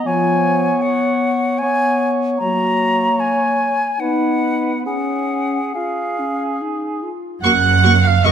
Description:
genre	classical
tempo	68-78 BPM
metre	3/4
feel	rubato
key	F# major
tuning	A4 = 440 Hz
part	concert flute	second line	0.0-6.6 s	E#5 to A#5	-20 LUFS	left 1 dB	none
part	dark clarinet	second line	0.0-7.4 s	A#3 to E#4	-23 LUFS	left 2 dB	none
part	dark cor anglais	second line	0.0-8.3 s	G#4 to F#5	-21 LUFS	right 3 dB	none
part	dark French horn section	sustained chords	0.1-5.6 s	E#3 to D#4	-22 LUFS	left 2 dB	none
part	rich studio violin section	melody	7.4-8.3 s	C#6	-20 LUFS	equal	none
part	rich studio violin section	second line	7.4-8.3 s	D#5 to F#5	-21 LUFS	right 1 dB	none
part	rich symphonic viola section	accompaniment	7.4-8.3 s	A#3 to F#4	-20 LUFS	right 2 dB	none
part	rich chamber cello section	bass	7.4-8.3 s	F#2	-19 LUFS	right 4 dB	none
part	rich symphonic double bass section	bass	7.4-8.3 s	F#1	-16 LUFS	right 4 dB	none
room	moderate scoring stage reverb, RT60 1.7 s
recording	none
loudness	-15 LUFS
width	side -8 dB against mid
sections	0.0-7.4 A section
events	none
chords	0.1 C#7/E#; 2.4 F#; 4.0 B; 4.9 C#; 7.4 F#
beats	| 0.05 0.83 1.61 | 2.40 3.20 4.01 | 4.86 5.75 6.61 | 7.44 8.25

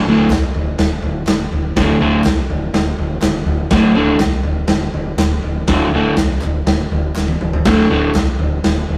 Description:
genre	garage rock duo or trio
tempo	122 BPM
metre	4/4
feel	straight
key	unclear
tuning	A4 = 440 Hz
part	crunchy overdriven guitar	riff	0.0-8.1 s	D2 to D3	-16 LUFS	equal	none
part	growling fingered electric bass	bass	0.1-9.0 s	D1 to C2	-24 LUFS	equal	overdrive
part	raw garage drum kit	drums	0.1-9.0 s	crash cymbal, kick drum, snare drum, toms	-19 LUFS	equal	none
part	group handclap	percussion	0.3-8.3 s	none	-36 LUFS	equal	none
room	moderate stone room reverb, RT60 1.1 s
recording	rough rehearsal-room recording, tube saturation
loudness	-16 LUFS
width	mono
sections	0.0-9.0 A section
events	drum fill 7.2-7.7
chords	0.0 D5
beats	0.31 0.80 1.29 | 1.77 2.26 2.75 3.24 | 3.73 4.22 4.71 5.20 | 5.69 6.18 6.67 7.17 | 7.66 8.14 8.64

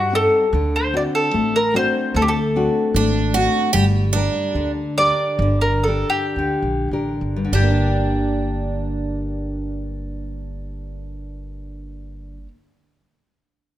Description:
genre	fado-style ballad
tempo	47-76 BPM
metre	2/4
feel	rubato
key	G harmonic minor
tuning	A4 = 440 Hz
part	mandolin	melody	0.0-12.5 s	F#4 to D5	-20 LUFS	equal	none
part	nylon-string guitar	accompaniment	0.0-12.6 s	G2 to Bb4	-24 LUFS	left 3 dB	none
part	upright bass	bass	0.0-12.5 s	G1 to G2	-23 LUFS	right 1 dB	none
part	picked twelve-string acoustic guitar	second line	3.0-4.7, 7.5-12.5 s	D4 to G4	-24 LUFS	right 6 dB	none
room	light reverb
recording	close, detailed microphones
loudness	-17 LUFS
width	side -13 dB against mid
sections	0.0-7.5 A section; 7.5-12.4 B section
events	slowing down 3.7-7.5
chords	0.0 Cm; 0.5 D7; 3.7 Gm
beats	| 0.53 1.34 | 2.15 2.95 | 3.75 4.55 | 5.41 6.38 | 7.54 8.77 | 9.97 11.19

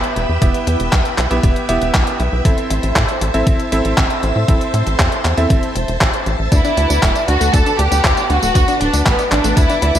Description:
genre	italo disco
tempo	118 BPM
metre	4/4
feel	straight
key	unclear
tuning	A4 = 440 Hz
part	string machine, full ensemble	sustained chords	0.0-10.0 s	B4 to E6	-23 LUFS	equal	ensemble chorus
part	clear electric grand piano	stabs	0.0-5.7 s	B3 to E5	-21 LUFS	right 2 dB	tape echo
part	detuned 8-bit digital drum machine	drums	0.0-10.0 s	handclaps, hi-hat, tambourine	-20 LUFS	equal	gated reverb
part	tight sequencer bass	bass	0.2-10.0 s	D1 to A2	-18 LUFS	equal	none
part	electronic kick drum	drums	0.4-9.7 s	none	-16 LUFS	equal	none
part	warm symphonic violin section	melody	6.5-10.0 s	B3 to A4	-17 LUFS	right 1 dB	vintage 12-bit sampler grit
part	analog pluck	arpeggios	6.5-10.0 s	A3 to D5	-23 LUFS	left 3 dB	chorus, tape echo
room	light reverb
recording	vinyl crackle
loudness	-13 LUFS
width	side -10 dB against mid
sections	0.0-10.0 A section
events	none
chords	0.0 Em; 2.5 Am; 6.5 D6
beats	| 0.42 0.93 1.43 1.94 | 2.45 2.96 3.47 3.98 | 4.49 4.99 5.50 6.01 | 6.52 7.03 7.54 8.04 | 8.55 9.06 9.57

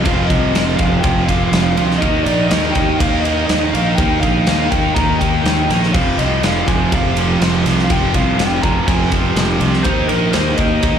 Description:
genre	hard rock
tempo	123 BPM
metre	4/4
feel	straight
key	unclear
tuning	A4 = 439 Hz
part	lead guitar through a small cranked amp	melody	0.0-11.0 s	Bb4 to Bb5	-22 LUFS	left 2 dB	overdrive, slapback echo, tape echo
part	lush unison pad	sustained chords	0.0-11.0 s	F3 to Ab4	-30 LUFS	equal	none
part	crunchy overdriven guitar	riff	0.0-11.0 s	F2 to Eb4	-21 LUFS	right 2 dB	none
part	scooped high-gain guitar	riff	0.0-11.0 s	F2 to Eb4	-24 LUFS	left 13 dB	distortion
part	tight distorted guitar	riff	0.0-11.0 s	F2 to Eb4	-22 LUFS	right 11 dB	distortion, slapback echo
part	fuzz fingered electric bass	bass	0.0-11.0 s	F1 to Eb2	-19 LUFS	equal	overdrive
part	big rock drum kit	drums	0.1-10.9 s	crash cymbal, kick drum, ride cymbal, snare drum	-18 LUFS	equal	none
room	small room ambience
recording	live gig heard through the venue's PA, club reverb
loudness	-13 LUFS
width	side -8 dB against mid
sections	0.0-11.0 A section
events	none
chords	0.0 Fm; 2.0 Eb; 5.9 F5; 9.9 Eb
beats	| 0.06 0.55 1.04 1.53 | 2.02 2.51 3.00 3.49 | 3.98 4.47 4.96 5.45 | 5.94 6.43 6.92 7.40 | 7.89 8.38 8.87 9.36 | 9.85 10.34 10.83

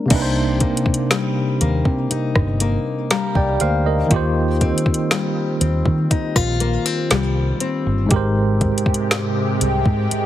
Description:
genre	contemporary R&B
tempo	60 BPM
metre	4/4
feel	straight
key	C minor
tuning	A4 = 440 Hz
part	tine electric piano	accompaniment	0.0-10.3 s	Ab2 to Bb5	-21 LUFS	right 2 dB	medium stereo tremolo
part	fingerpicked steel-string acoustic guitar	arpeggios	0.1-8.7 s	C3 to F4	-23 LUFS	left 6 dB	tape echo
part	fingered electric bass	bass	0.1-10.1 s	G1 to Eb3	-20 LUFS	equal	none
part	smooth R&B drum kit	drums	0.1-10.3 s	crash cymbal, hi-hat, kick drum, rim click, snare drum	-20 LUFS	equal	none
part	lush unison pad	sustained chords	8.5-10.3 s	C3 to G4	-24 LUFS	equal	chorus, phaser, sidechain pumping
room	digital ambience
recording	heavily compressed radio sound, multiband compression, low-pass filter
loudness	-16 LUFS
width	side -12 dB against mid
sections	0.1-10.3 A section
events	none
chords	0.1 Cm7; 4.1 Eb69; 8.1 Abmaj7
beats	| 0.11 1.11 2.11 3.11 | 4.11 5.11 6.11 7.11 | 8.11 9.11 10.11

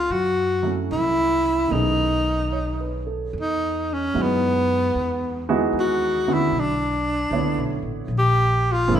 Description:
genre	jazz ballad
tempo	75 BPM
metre	4/4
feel	swing 68% on 8ths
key	E major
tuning	A4 = 441 Hz
part	breathy tenor saxophone	melody	0.0-9.0 s	B3 to G4	-21 LUFS	equal	none
part	warm upright piano	accompaniment	0.0-9.0 s	C#3 to C#5	-26 LUFS	right 4 dB	none
part	upright bass	bass	0.0-9.0 s	G1 to F#2	-26 LUFS	left 1 dB	none
room	moderate large studio reverb, RT60 1.4 s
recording	minimal, uncompressed stereo recording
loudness	-20 LUFS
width	side -9 dB against mid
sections	0.0-3.3 A section; 3.3-9.0 B section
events	tenor saxophone solo 3.3-9.0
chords	0.1 F#m7; 1.7 B13; 3.3 Emaj9; 6.5 Bm11; 8.1 A#9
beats	| 0.12 0.92 1.72 2.53 | 3.33 4.14 4.94 5.73 | 6.53 7.31 8.10 8.89

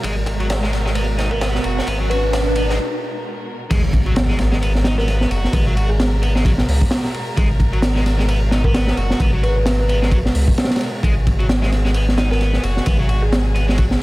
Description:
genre	breakbeat, breaks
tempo	131 BPM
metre	4/4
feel	swing 57% on 16ths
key	unclear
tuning	A4 = 439 Hz
part	dark studio string section	sustained chords	0.0-14.0 s	Cb3 to Bb4	-29 LUFS	equal	sidechain pumping, low-pass filter
part	overdriven electric guitar	riff	0.0-13.8 s	Gb3 to Gb4	-27 LUFS	equal	tube saturation, ping-pong delay
part	saturated sub bass	bass	0.0-14.0 s	Gb1 to Db2	-18 LUFS	equal	none
part	crunchy breakbeat drum kit	drums	0.0-14.0 s	crash cymbal, hi-hat, kick drum, ride cymbal, snare drum	-19 LUFS	equal	high-pass filter on kick, high-pass filter on cymbals, high-pass filter on hats, high-pass filter on snare, high-pass filter on room
part	riser and impact	sound effects	0.0-5.5 s	none	-26 LUFS	right 1 dB	none
part	kalimba	melody	1.3-13.7 s	Ab4 to Cb5	-27 LUFS	equal	telephone sound, vintage 12-bit sampler grit, ping-pong delay
room	little or no reverb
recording	none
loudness	-15 LUFS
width	side -19 dB against mid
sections	0.0-3.7 A section; 3.7-14.0 B section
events	build-up 0.0-3.7; riser 0.0-2.8; break 2.8-3.7; drop 3.7-14.0; impact 3.7-5.5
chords	0.0 Abm9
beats	| 0.04 0.50 0.96 1.41 | 1.87 2.33 2.79 3.25 | 3.70 4.16 4.62 5.08 | 5.54 5.99 6.45 6.91 | 7.37 7.83 8.28 8.74 | 9.20 9.66 10.12 10.57 | 11.03 11.49 11.95 12.41 | 12.87 13.32 13.78

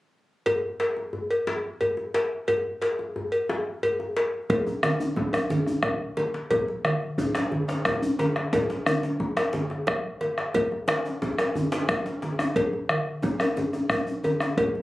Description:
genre	west african traditional, West African drum ensemble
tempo	119 BPM (dotted quarters)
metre	12/8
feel	straight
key	none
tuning	none
part	cowbell	percussion	0.5-14.7 s	none	-27 LUFS	left 1 dB	none
part	djembe	percussion	0.5-14.8 s	none	-33 LUFS	left 2 dB	none
part	bombo	percussion	4.5-14.7 s	none	-28 LUFS	equal	none
part	congas	percussion	4.5-14.8 s	none	-31 LUFS	right 2 dB	none
part	djembe	percussion	4.7-14.6 s	none	-29 LUFS	left 1 dB	none
room	moderate studio reverb, RT60 0.7 s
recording	recorded on a phone in the room, club reverb, compression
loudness	-24 LUFS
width	side -17 dB against mid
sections	0.5-4.5 A section; 4.5-14.8 B section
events	none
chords	none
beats	| 0.46 0.97 1.47 1.98 | 2.48 2.98 3.49 3.99 | 4.50 5.00 5.50 6.01 | 6.51 7.02 7.52 8.03 | 8.53 9.03 9.54 10.04 | 10.55 11.05 11.55 12.06 | 12.56 13.07 13.57 14.07 | 14.58

